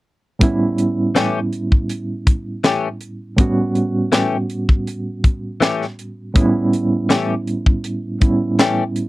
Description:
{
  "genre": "straight-eighth soul blues",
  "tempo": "81 BPM",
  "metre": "4/4",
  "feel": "straight",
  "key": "A mixolydian",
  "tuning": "A4 = 440 Hz",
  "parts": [
    { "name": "reed electric piano", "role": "accompaniment", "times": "0.4-9.1 s", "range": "A2 to F#4", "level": "-19 LUFS", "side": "right 2 dB", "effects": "tremolo" },
    { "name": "tight funk drum kit", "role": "drums", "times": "0.4-9.1 s", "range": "hi-hat, kick drum, snare drum", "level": "-15 LUFS", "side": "equal", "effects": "none" },
    { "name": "direct-recorded clean electric guitar", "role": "stabs", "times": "1.1-8.8 s", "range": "E3 to G4", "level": "-18 LUFS", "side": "left 5 dB", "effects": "analog chorus" }
  ],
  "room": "little or no reverb",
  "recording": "dry, close 1970s-style studio recording",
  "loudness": "-16 LUFS",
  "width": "side -18 dB against mid",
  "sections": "0.4-9.1 A section",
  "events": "none",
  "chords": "0.4 A7",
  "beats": "| 0.41 1.16 1.90 2.65 | 3.39 4.13 4.88 5.62 | 6.36 7.11 7.85 8.60"
}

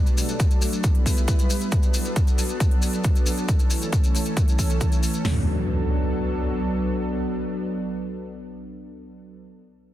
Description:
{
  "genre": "uplifting trance",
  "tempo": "136 BPM",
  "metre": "4/4",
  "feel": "straight",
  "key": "B minor",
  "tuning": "A4 = 444 Hz",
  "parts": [
    { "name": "lush unison pad", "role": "sustained chords", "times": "0.0-9.3 s", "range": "E3 to B4", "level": "-27 LUFS", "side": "equal", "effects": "chorus, sidechain pumping" },
    { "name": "electronic hi-hat", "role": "drums", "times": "0.1-5.2 s", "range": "none", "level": "-35 LUFS", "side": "left 2 dB", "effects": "overdrive" },
    { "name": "maracas", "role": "percussion", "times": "0.1-5.2 s", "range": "none", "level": "-33 LUFS", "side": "left 3 dB", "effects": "none" },
    { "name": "big-room dance drum kit", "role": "drums", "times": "0.4-5.4 s", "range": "hi-hat, kick drum, snare drum, toms", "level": "-20 LUFS", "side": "equal", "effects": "overdrive" },
    { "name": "impact", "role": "sound effects", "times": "5.2-9.4 s", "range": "none", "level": "-26 LUFS", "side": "equal", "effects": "none" }
  ],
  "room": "little or no reverb",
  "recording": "dense, heavily limited modern master",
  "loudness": "-20 LUFS",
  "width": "side -13 dB against mid",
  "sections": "0.0-5.2 A section; 5.2-8.8 B section",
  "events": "none",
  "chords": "0.0 D; 0.8 Em; 1.7 Bm7; 3.5 A; 5.2 Bm7",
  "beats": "0.40 0.84 1.28 | 1.72 2.16 2.60 3.04 | 3.48 3.93 4.37 4.81 | 5.25 5.69 6.13 6.57 | 7.01 7.46 7.90 8.34"
}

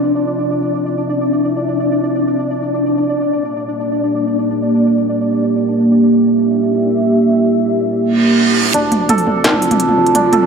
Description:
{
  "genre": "half-time drum and bass",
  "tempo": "free time",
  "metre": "none",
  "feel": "none",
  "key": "D minor",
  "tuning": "A4 = 440 Hz",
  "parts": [
    { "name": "dark analog pad", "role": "sustained chords", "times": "0.0-10.5 s", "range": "Bb3 to E5", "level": "-15 LUFS", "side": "right 1 dB", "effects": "chorus" },
    { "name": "santur", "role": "arpeggios", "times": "0.0-0.9, 8.7-10.5 s", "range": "C4 to A4", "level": "-17 LUFS", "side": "right 3 dB", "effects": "digital delay" },
    { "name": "downlifter, reverse cymbal and riser", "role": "sound effects", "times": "0.0-0.3, 8.1-10.5 s", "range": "none", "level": "-21 LUFS", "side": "right 4 dB", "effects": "none" },
    { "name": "pulsing gated texture", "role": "texture", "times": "0.0-8.7 s", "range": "D4 to D5", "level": "-18 LUFS", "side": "left 2 dB", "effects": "chorus, built-in reverb" },
    { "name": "long sustained 808-style bass", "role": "bass", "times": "8.7-10.5 s", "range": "D2", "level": "-24 LUFS", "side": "equal", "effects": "high-pass filter" },
    { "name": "industrial drum kit", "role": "drums", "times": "8.7-10.4 s", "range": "hi-hat, snare drum, toms", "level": "-15 LUFS", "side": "equal", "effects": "overdrive, small room ambience" }
  ],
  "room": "moderate lush hall reverb, RT60 2.0 s, digital ambience",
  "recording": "none",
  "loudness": "-12 LUFS",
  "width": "side -6 dB against mid",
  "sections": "0.0-8.7 A section; 8.7-10.5 B section",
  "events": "reverse cymbal 8.1-8.7; build-up 8.7-10.5; riser 8.7-10.5",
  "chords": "0.0 Dm7; 3.1 Gm; 8.7 Dm7",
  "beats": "free time"
}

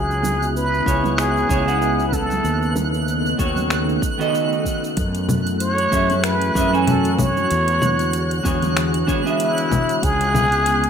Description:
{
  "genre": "sunset chillout",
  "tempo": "95 BPM",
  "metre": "4/4",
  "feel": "swing 56% on 16ths",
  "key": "F# minor",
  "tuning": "A4 = 437 Hz",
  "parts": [
    { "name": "trumpet with plunger mute", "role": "melody", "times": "0.0-10.9 s", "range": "E4 to C#5", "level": "-21 LUFS", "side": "equal", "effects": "digital delay" },
    { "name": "soft string machine", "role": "sustained chords", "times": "0.0-10.9 s", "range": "C#3 to C#5", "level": "-26 LUFS", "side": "equal", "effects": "ensemble chorus" },
    { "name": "fretless electric bass", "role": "bass", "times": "0.0-10.9 s", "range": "C#2 to F#2", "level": "-23 LUFS", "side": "equal", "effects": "none" },
    { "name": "twinkling granular texture", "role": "texture", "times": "0.0-10.9 s", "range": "F#6", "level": "-29 LUFS", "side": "right 3 dB", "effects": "built-in reverb" },
    { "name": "smooth R&B drum kit", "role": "drums", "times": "0.1-10.9 s", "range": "cabasa, congas, finger snaps, hi-hat", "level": "-26 LUFS", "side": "left 2 dB", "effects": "none" },
    { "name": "congas", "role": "percussion", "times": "0.2-10.5 s", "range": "none", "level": "-28 LUFS", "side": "right 4 dB", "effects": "none" },
    { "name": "clean electric guitar", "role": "accompaniment", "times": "0.9-10.0 s", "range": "C#3 to G#5", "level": "-22 LUFS", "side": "moving between left 4 dB and right 4 dB", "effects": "auto-pan, digital delay" },
    { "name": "electronic kick drum", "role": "drums", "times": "0.9-10.2 s", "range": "none", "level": "-24 LUFS", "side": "equal", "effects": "none" }
  ],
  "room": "wet studio reverb, RT60 0.6 s",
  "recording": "rough home demo mix",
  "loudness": "-17 LUFS",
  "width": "side -7 dB against mid",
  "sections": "0.0-10.9 A section",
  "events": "none",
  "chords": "0.0 C#m7; 2.5 B9/D#; 5.0 F#m9; 7.5 E13; 10.0 C#m7",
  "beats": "0.56 1.19 1.82 | 2.45 3.08 3.71 4.34 | 4.98 5.61 6.24 6.87 | 7.50 8.13 8.77 9.40 | 10.03 10.66"
}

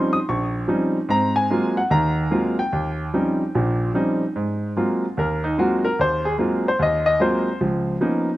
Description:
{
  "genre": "solo jazz",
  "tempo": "148 BPM",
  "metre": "4/4",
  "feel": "swing 64% on 8ths",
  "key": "unclear",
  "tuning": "A4 = 440 Hz",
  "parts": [
    { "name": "warm concert grand piano", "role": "solo", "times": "0.0-8.3 s", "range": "Bb1 to Eb6", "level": "-19 LUFS", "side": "equal", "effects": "slapback echo" }
  ],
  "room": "little or no reverb",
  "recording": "recorded outdoors, with no room sound",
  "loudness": "-19 LUFS",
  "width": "side -16 dB against mid",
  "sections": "0.0-4.4 A section; 4.4-8.4 B section",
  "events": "grand piano solo 4.4-8.4",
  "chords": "0.0 Eb13; 1.1 Ab13; 2.7 Eb13; 4.4 Ab13; 7.6 Db13",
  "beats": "0.28 0.69 | 1.10 1.50 1.91 2.32 | 2.72 3.13 3.54 3.94 | 4.35 4.76 5.17 5.57 | 5.98 6.38 6.79 7.20 | 7.60 8.01"
}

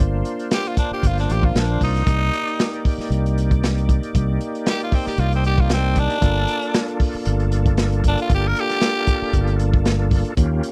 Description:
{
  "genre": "straight-eighth soul blues",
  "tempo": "116 BPM",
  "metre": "4/4",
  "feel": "swing 54% on 16ths",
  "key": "G minor",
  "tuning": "A4 = 440 Hz",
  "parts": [
    { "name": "bright tonewheel organ", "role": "accompaniment", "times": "0.0-10.7 s", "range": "Bb3 to D5", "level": "-28 LUFS", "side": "equal", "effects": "slow rotary speaker, overdrive, chorus vibrato" },
    { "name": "fingered electric bass", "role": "bass", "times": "0.0-10.6 s", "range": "G1 to Eb2", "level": "-22 LUFS", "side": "equal", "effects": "none" },
    { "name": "crunchy breakbeat drum kit", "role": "drums", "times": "0.2-10.7 s", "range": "hi-hat, kick drum, snare drum", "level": "-23 LUFS", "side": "equal", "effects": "none" },
    { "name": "breathy tenor saxophone", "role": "melody", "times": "0.5-9.6 s", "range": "C4 to Bb4", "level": "-26 LUFS", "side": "equal", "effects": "none" }
  ],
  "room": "little or no reverb",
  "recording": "dry, close 1970s-style studio recording",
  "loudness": "-20 LUFS",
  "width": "mono",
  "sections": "0.0-10.7 A section",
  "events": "tenor saxophone solo 0.0-10.7",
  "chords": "0.0 Gm7; 2.1 Cm7; 6.2 Gm7",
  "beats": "0.51 1.03 1.55 | 2.07 2.59 3.11 3.63 | 4.15 4.67 5.19 5.71 | 6.23 6.75 7.27 7.79 | 8.30 8.82 9.34 9.86 | 10.38"
}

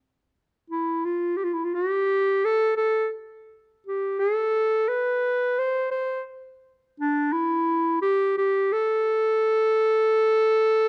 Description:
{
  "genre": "turkish",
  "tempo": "free time",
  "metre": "none",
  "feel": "none",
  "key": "A makam nihavent",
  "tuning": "A4 = 440 Hz",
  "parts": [
    { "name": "warm clarinet", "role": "solo", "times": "0.7-10.9 s", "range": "D4 to C5", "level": "-24 LUFS", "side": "equal", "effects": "none" }
  ],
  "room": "moderate recital hall reverb, RT60 1.6 s",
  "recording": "close, detailed microphones",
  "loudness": "-24 LUFS",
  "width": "mono",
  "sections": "0.0-10.9 A section",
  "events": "none",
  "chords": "none",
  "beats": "free time"
}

